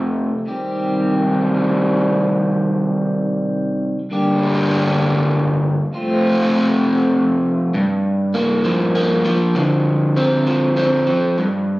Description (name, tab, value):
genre	rock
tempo	66 BPM (dotted quarters)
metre	6/8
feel	straight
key	G minor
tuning	A4 = 440 Hz
part	crunchy overdriven guitar	solo	0.0-11.8 s	F2 to G4	-15 LUFS	equal	slapback echo
room	light reverb, digital ambience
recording	recorded on a phone in the room, studio reverb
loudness	-15 LUFS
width	side -19 dB against mid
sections	0.0-7.7 A section; 7.7-11.8 B section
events	none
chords	0.5 Cm; 4.1 Gm; 5.9 F; 7.7 Gm7; 9.6 Dm7